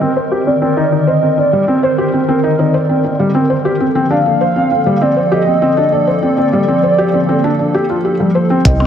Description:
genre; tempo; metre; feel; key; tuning
IDM; 99 BPM; 4/4; straight; unclear; A4 = 440 Hz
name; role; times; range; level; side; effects
warbly nostalgic lead; melody; 0.0-8.9 s; Bb4 to F5; -16 LUFS; right 1 dB; wide subtle chorus, tape echo
hollow soft pad; sustained chords; 0.0-8.9 s; D3 to Bb4; -16 LUFS; equal; ensemble chorus
felt-muted upright piano; arpeggios; 0.0-8.9 s; G3 to C5; -15 LUFS; left 1 dB; vintage 12-bit sampler grit, low-pass filter, tape echo
deep acid bass; bass; 8.7-8.9 s; C2; -12 LUFS; equal; tube saturation
electronic hi-hat and percussion blips; drums; 8.7-8.8 s; none; -23 LUFS; left 1 dB; none
electronic kick drum; drums; 8.7-8.8 s; none; -12 LUFS; equal; none
room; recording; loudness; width
wet lush hall reverb, RT60 2.3 s; heavily compressed radio sound; -11 LUFS; side -8 dB against mid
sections
0.0-8.7 A section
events
none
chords
0.0 Cm9; 3.8 Bbmaj7

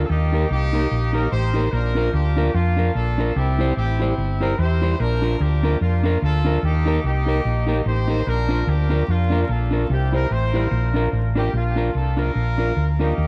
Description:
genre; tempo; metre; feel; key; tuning
ska; 147 BPM; 4/4; swing 57% on 8ths; Bb major; A4 = 438 Hz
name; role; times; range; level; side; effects
clear horn section; melody; 0.0-13.3 s; Bb3 to C5; -28 LUFS; equal; dub echo
mellow electric guitar; accompaniment; 0.0-13.1 s; D4 to C5; -27 LUFS; equal; spring reverb
hollow-body short-scale fingered electric bass; bass; 0.0-13.3 s; G1 to F2; -22 LUFS; equal; none
room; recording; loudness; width
light reverb; vinyl crackle, nothing above 10.5 kHz; -21 LUFS; mono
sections
0.0-11.5 A section; 11.5-13.3 B section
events
none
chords
0.1 Eb; 1.7 Bb; 3.4 C; 5.0 Bb; 6.6 Eb; 8.3 Bb; 9.9 C; 10.7 Bb

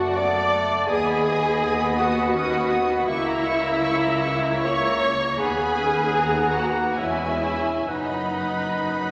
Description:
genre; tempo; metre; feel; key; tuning
classical; 62-84 BPM; 3/4; rubato; B major; A4 = 440 Hz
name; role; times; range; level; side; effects
warm studio violin section; melody; 0.0-9.1 s; D5 to D#6; -34 LUFS; equal; none
hollow concert flute; second line; 0.0-9.1 s; D#5 to D6; -33 LUFS; equal; none
warm oboe; second line; 0.0-9.1 s; D5 to F#5; -33 LUFS; equal; none
warm studio violin section; second line; 0.0-9.1 s; D#5 to D6; -34 LUFS; equal; none
mellow bassoon; accompaniment; 0.0-9.1 s; A3 to C#4; -33 LUFS; equal; none
rich chamber viola section; accompaniment; 0.0-9.1 s; D#4 to D5; -28 LUFS; equal; none
warm French horn section; sustained chords; 0.0-9.1 s; D#4 to D5; -31 LUFS; equal; none
rich studio cello section; bass; 0.0-9.1 s; C#2 to F#2; -34 LUFS; equal; none
warm studio double bass section; bass; 0.0-9.1 s; E1 to D#2; -35 LUFS; equal; none
clear clarinet; second line; 0.2-9.1 s; F#3 to C#4; -36 LUFS; equal; none
room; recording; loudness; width
wet scoring stage reverb, RT60 1.6 s; none; -22 LUFS; mono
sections
0.0-9.1 A section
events
none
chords
0.0 D/F#; 0.9 B/D#; 3.1 A#dim/C#; 5.4 B/D#; 7.0 C#m/E; 7.9 B/F#

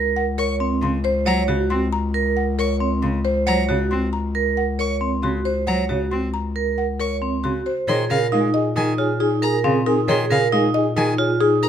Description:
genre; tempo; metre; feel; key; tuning
classical, minimalist pattern music; 136 BPM; 5/4; straight; Bb minor from 7.9 s; A4 = 441 Hz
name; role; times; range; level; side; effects
vibraphone with medium hard mallets; arpeggios; 0.0-11.7 s; C4 to Db5; -22 LUFS; right 5 dB; none
dark bass clarinet; bass; 0.0-11.7 s; Db2 to Bb2; -24 LUFS; left 2 dB; none
buzzing marimba with medium mallets; melody; 0.2-11.7 s; Ab4 to C6; -25 LUFS; left 6 dB; none
rich violin; arpeggios; 0.4-11.7 s; F5 to Db6; -27 LUFS; left 4 dB; none
rich cello; accompaniment; 0.8-11.1 s; Db3 to C4; -26 LUFS; equal; none
warm French horn; second line; 7.9-11.7 s; Ab4; -26 LUFS; right 3 dB; none
room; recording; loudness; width
light reverb; close, detailed microphones; -18 LUFS; side -9 dB against mid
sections
0.0-7.9 A section; 7.9-11.7 B section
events
none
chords
0.0 Gb/Db; 7.9 Bbm9

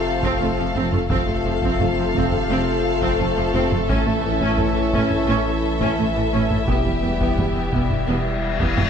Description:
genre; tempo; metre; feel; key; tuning
cinematic, hybrid orchestral and electronic film score; 86 BPM; 4/4; straight; unclear; A4 = 440 Hz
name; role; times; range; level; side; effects
rich studio violin section; melody; 0.0-8.9 s; E5 to F5; -29 LUFS; left 6 dB; none
warm symphonic violin section; second line; 0.0-8.9 s; G4 to A4; -28 LUFS; left 3 dB; none
chorused pulse-width pad; sustained chords; 0.0-8.9 s; G3 to E5; -30 LUFS; equal; none
mellow French horn section; sustained chords; 0.0-8.9 s; B3 to F4; -27 LUFS; left 5 dB; none
warm trombone section; sustained chords; 0.0-8.9 s; C3 to A3; -29 LUFS; right 4 dB; none
saturated sub bass; bass; 0.0-8.9 s; E1 to A1; -28 LUFS; equal; none
rich symphonic viola section; accompaniment; 0.2-8.8 s; E3 to C#4; -27 LUFS; right 2 dB; none
dark symphonic cello section; bass; 0.2-8.8 s; E2 to A2; -26 LUFS; right 2 dB; none
solo taiko drums; drums; 0.2-8.9 s; none; -27 LUFS; equal; none
rich symphonic double bass section; bass; 0.4-8.8 s; E1 to A1; -28 LUFS; right 3 dB; none
reverse cymbal; sound effects; 7.8-8.9 s; none; -28 LUFS; left 7 dB; none
room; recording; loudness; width
moderate scoring stage reverb, RT60 1.9 s; dark, warm production; -18 LUFS; side -7 dB against mid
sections
0.0-8.9 A section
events
reverse cymbal 7.8-8.9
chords
0.0 F; 3.9 A; 6.7 Em

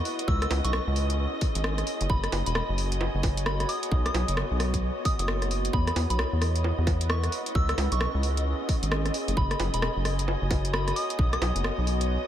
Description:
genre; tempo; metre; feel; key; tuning
UK garage, two-step garage; 132 BPM; 4/4; swing 62% on 16ths; C# minor; A4 = 440 Hz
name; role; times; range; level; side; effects
soft synth bell; melody; 0.0-11.5 s; B5 to E6; -34 LUFS; equal; chorus, ping-pong delay
soft string machine; sustained chords; 0.0-12.3 s; D#5; -37 LUFS; equal; ensemble chorus, sidechain pumping
warbly tape-like pad; texture; 0.0-12.3 s; B3 to G#5; -34 LUFS; equal; chorus, built-in reverb, sidechain pumping
garage drum kit; drums; 0.1-12.1 s; bongos, hi-hat, rim click; -32 LUFS; equal; none
rubbery square bass; bass; 0.3-12.2 s; E1 to E2; -27 LUFS; equal; none
electronic kick drum; drums; 0.3-11.3 s; none; -26 LUFS; equal; none
room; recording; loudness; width
light reverb; none; -24 LUFS; side -11 dB against mid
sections
0.0-12.3 A section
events
none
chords
0.1 C#m7; 1.9 F#5; 3.7 B; 5.7 E5; 7.3 C#m7; 9.1 F#5; 11.0 B

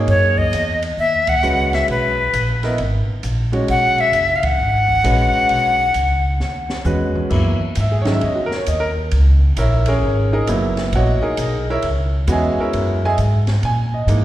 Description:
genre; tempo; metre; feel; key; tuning
modal jazz; 133 BPM; 4/4; swing 65% on 8ths; F# mixolydian; A4 = 440 Hz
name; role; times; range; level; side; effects
clear baby grand piano; accompaniment; 0.0-14.2 s; D#3 to G#5; -20 LUFS; right 1 dB; slapback echo
upright bass; bass; 0.0-14.2 s; F#1 to A#2; -18 LUFS; equal; none
breathy bright jazz flute; melody; 0.1-6.9 s; B4 to F#5; -16 LUFS; left 1 dB; slapback echo
open jazz drum kit; drums; 0.1-14.2 s; crash cymbal, hi-hat, kick drum, ride cymbal, snare drum, toms; -28 LUFS; equal; none
room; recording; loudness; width
light reverb; live gig heard through the venue's PA, recital hall reverb; -15 LUFS; side -13 dB against mid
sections
0.0-7.3 A section; 7.3-14.2 B section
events
band accent 1.2, 4.4; drum fill 6.4-7.3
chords
0.0 F#13

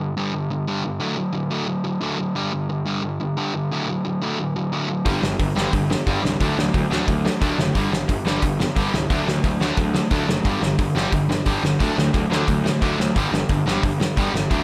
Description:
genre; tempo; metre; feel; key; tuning
punk rock; 178 BPM; 4/4; straight; unclear; A4 = 440 Hz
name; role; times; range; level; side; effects
sludgy distorted guitar; riff; 0.0-14.6 s; G2 to A3; -25 LUFS; equal; overdrive
tight distorted guitar; riff; 5.1-14.6 s; G2 to D4; -28 LUFS; equal; distortion
fuzz picked electric bass; bass; 5.1-14.6 s; F#1 to D2; -29 LUFS; equal; overdrive
loose indie drum kit; drums; 5.1-14.6 s; hi-hat, kick drum, snare drum; -25 LUFS; equal; none
room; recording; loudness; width
light reverb; none; -22 LUFS; mono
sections
0.0-14.6 A section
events
none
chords
0.0 G5; 1.0 D; 2.4 G5; 3.7 D; 5.1 G5; 6.4 D; 7.8 G5; 9.1 D; 10.5 G5; 11.8 D; 13.2 G5

